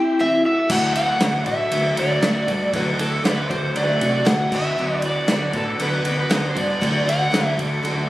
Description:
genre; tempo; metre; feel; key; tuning
folk rock and heartland rock; 118 BPM; 4/4; straight; D mixolydian; A4 = 440 Hz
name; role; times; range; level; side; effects
overdriven slide guitar; melody; 0.0-7.6 s; A4 to G5; -22 LUFS; equal; slapback echo
picked steel-string acoustic guitar; accompaniment; 0.0-8.1 s; C3 to G4; -24 LUFS; left 1 dB; none
bright tonewheel organ; sustained chords; 0.0-8.1 s; G4 to D6; -34 LUFS; equal; none
electric guitar through a small old amp; riff; 0.7-8.1 s; D3 to F#4; -26 LUFS; equal; spring reverb
hollow-body short-scale fingered electric bass; bass; 0.7-8.0 s; D2 to C3; -27 LUFS; equal; none
natural country drum kit; drums; 0.7-8.0 s; crash cymbal, kick drum, ride cymbal, snare drum; -24 LUFS; right 1 dB; none
room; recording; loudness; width
light reverb; recorded on a phone in the room, studio reverb, compression; -18 LUFS; side -16 dB against mid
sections
0.0-8.1 A section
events
none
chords
0.4 D; 4.5 Bm/D; 6.8 D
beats
0.19 | 0.70 1.21 1.72 2.22 | 2.73 3.24 3.75 4.26 | 4.77 5.28 5.79 6.30 | 6.81 7.32 7.83

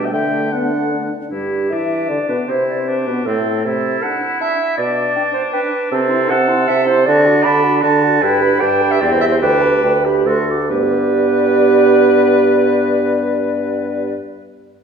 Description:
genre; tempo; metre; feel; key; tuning
quick classical-period movement for wind quintet; 132-160 BPM; 3/4; straight; G major; A4 = 440 Hz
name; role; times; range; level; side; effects
mellow hollow silver concert flute; melody; 0.0-14.1 s; G4 to D6; -22 LUFS; left 9 dB; none
clear oboe; second line; 0.0-14.1 s; C4 to G5; -24 LUFS; left 2 dB; none
mellow French horn; accompaniment; 0.0-14.1 s; G3 to B4; -22 LUFS; left 1 dB; none
warm clarinet; accompaniment; 0.0-14.1 s; D4 to B5; -17 LUFS; right 5 dB; none
mellow bassoon; bass; 0.0-14.1 s; D2 to E3; -19 LUFS; right 1 dB; none
room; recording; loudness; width
wet recital hall reverb, RT60 1.6 s; recorded in a church or concert hall; -13 LUFS; side -6 dB against mid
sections
0.0-1.3 A section; 1.3-10.7 B section; 10.7-13.4 C section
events
slowing down 7.6-10.7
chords
0.1 D; 1.3 G; 2.5 Am/C; 3.6 D7/C; 4.8 G/B (rootless); 5.9 Am/C; 7.1 D; 8.2 G; 9.0 C/E; 9.4 G/D; 10.3 D7; 10.7 G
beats
| 0.13 0.52 0.92 | 1.32 1.71 2.10 | 2.49 2.87 3.26 | 3.65 4.03 4.41 | 4.79 5.17 5.54 | 5.92 6.31 6.69 | 7.08 7.46 7.84 | 8.22 8.62 9.02 | 9.42 9.84 10.27 | 10.72 11.16 11.61 | 12.05 12.49 12.93

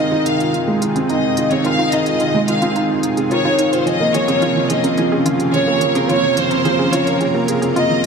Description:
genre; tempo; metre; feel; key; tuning
piano and strings electronica; 108 BPM; 4/4; straight; F minor; A4 = 440 Hz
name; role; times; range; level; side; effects
rich studio violin section; melody; 0.0-8.1 s; Bb4 to F5; -18 LUFS; left 1 dB; none
lush unison pad; sustained chords; 0.0-8.1 s; C3 to Bb4; -24 LUFS; equal; chorus
analog pluck; arpeggios; 0.0-8.1 s; Eb4 to Bb4; -26 LUFS; equal; chorus, digital delay
felt-muted upright piano; riff; 0.0-8.1 s; Eb3 to Ab4; -17 LUFS; right 2 dB; none
warm sub bass; bass; 0.0-8.1 s; none; barely audible; none; none
electronic hi-hat; drums; 0.3-8.1 s; none; -28 LUFS; right 1 dB; high-pass filter on hats, high-pass filter on room
room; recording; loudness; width
wet concert hall reverb, RT60 2.0 s, digital ambience; dark, warm production; -14 LUFS; side -5 dB against mid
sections
0.0-8.1 A section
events
build-up 0.0-8.1; filter sweep on synth arpeggio sound 0.0-8.1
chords
0.0 Fm7; 3.9 Bbm9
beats
0.54 1.10 | 1.65 2.21 2.76 3.32 | 3.87 4.43 4.99 5.54 | 6.10 6.65 7.21 7.76

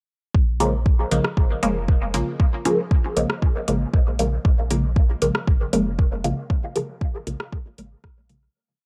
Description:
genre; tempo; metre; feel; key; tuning
dub techno; 117 BPM; 4/4; straight; Bb minor; A4 = 442 Hz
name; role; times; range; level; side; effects
pure sine sub bass; bass; 0.3-8.5 s; F1 to Bb1; -28 LUFS; equal; sidechain pumping
electronic kick drum; drums; 0.3-8.1 s; none; -21 LUFS; equal; none
filtered dub chord stab; stabs; 0.6-8.5 s; Db3 to Bb3; -26 LUFS; equal; phaser, sidechain pumping, dub echo
deep house drum kit; drums; 0.6-8.4 s; hi-hat, rim click; -31 LUFS; equal; dub echo
room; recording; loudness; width
little or no reverb; dry, gritty hardware recording, cassette tape; -21 LUFS; mono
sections
0.3-8.6 groove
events
filter sweep on synth stab 0.3-8.6; fade-out 5.8-8.6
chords
0.3 Bbm7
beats
| 0.35 0.86 1.37 1.88 | 2.40 2.91 3.42 3.94 | 4.45 4.96 5.47 5.99 | 6.50 7.01 7.53 8.04

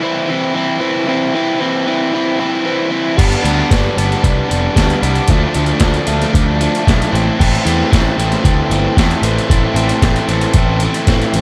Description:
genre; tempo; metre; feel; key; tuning
indie rock; 114 BPM; 4/4; straight; A minor; A4 = 439 Hz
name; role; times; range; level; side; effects
overdriven electric guitar; riff; 0.0-11.4 s; E3 to E4; -18 LUFS; equal; none
fuzz picked electric bass; bass; 3.2-11.4 s; F1 to E2; -19 LUFS; equal; overdrive
boom bap sampler-style drum kit; drums; 3.2-11.4 s; crash cymbal, hi-hat, kick drum, snare drum; -18 LUFS; equal; none
room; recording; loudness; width
little or no reverb; none; -14 LUFS; mono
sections
0.0-11.4 A section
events
none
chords
0.0 C/E; 3.2 G; 5.3 Dm; 7.1 Am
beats
0.03 0.56 | 1.08 1.61 2.14 2.66 | 3.19 3.71 4.24 4.77 | 5.29 5.82 6.35 6.87 | 7.40 7.92 8.45 8.97 | 9.50 10.02 10.55 11.07

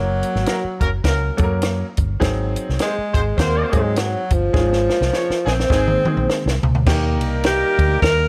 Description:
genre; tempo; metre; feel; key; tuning
uptempo 1960s-style soul; 103 BPM; 4/4; swing 59% on 8ths; unclear; A4 = 440 Hz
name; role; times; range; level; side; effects
breathy tenor saxophone; melody; 0.0-8.3 s; F3 to Bb4; -23 LUFS; equal; none
mellow hollow polished pan flute; second line; 0.0-8.3 s; F4 to C5; -32 LUFS; equal; none
clear upright piano; accompaniment; 0.0-7.5 s; Eb3 to Bb4; -27 LUFS; equal; none
vintage muted fingered electric bass; bass; 0.0-8.3 s; Gb1 to Ab2; -24 LUFS; equal; tube saturation
compact cocktail drum kit; drums; 0.2-8.2 s; crash cymbal, hi-hat, kick drum, ride cymbal, snare drum, toms; -23 LUFS; equal; none
mellow horn section; second line; 0.5-8.3 s; Eb3 to Db5; -29 LUFS; equal; none
room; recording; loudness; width
studio reverb; none; -19 LUFS; mono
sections
0.0-6.9 A section; 6.9-8.3 B section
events
drum fill 4.5-6.9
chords
0.0 Gb; 2.2 Ab7; 4.5 Db/Ab; 5.7 Ab; 6.9 Eb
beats
0.47 1.05 1.63 | 2.21 2.79 3.38 3.96 | 4.54 5.12 5.70 6.28 | 6.87 7.45 8.03

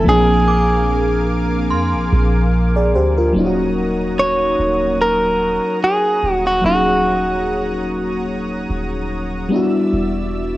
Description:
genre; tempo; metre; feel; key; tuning
contemporary R&B; 73 BPM; 4/4; swing 54% on 16ths; Eb phrygian from 3.4 s; A4 = 440 Hz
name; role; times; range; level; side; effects
direct-recorded clean electric guitar; melody; 0.0-8.3 s; Gb4 to Db5; -17 LUFS; equal; cassette tape, plate reverb, analog delay
FM electric piano with soft pad layer; accompaniment; 0.0-10.6 s; F3 to D5; -19 LUFS; left 1 dB; chorus, cassette tape, plate reverb
lush unison pad; sustained chords; 0.0-10.6 s; Bb4 to E6; -28 LUFS; equal; chorus, cassette tape, plate reverb
soft 808-style bass; bass; 0.0-10.6 s; Eb1 to F2; -21 LUFS; equal; none
synth chime; texture; 0.0-3.7 s; C6 to Ab6; -27 LUFS; right 2 dB; ensemble chorus, tremolo, cassette tape, analog delay
room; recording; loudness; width
light reverb; home recording on cassette; -15 LUFS; side -16 dB against mid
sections
0.0-3.4 A section; 3.4-10.6 B section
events
none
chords
0.1 Bb7; 3.4 Ebm7; 9.5 Em7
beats
| 0.06 0.89 1.71 2.53 | 3.35 4.17 5.00 5.82 | 6.64 7.46 8.28 9.10 | 9.93

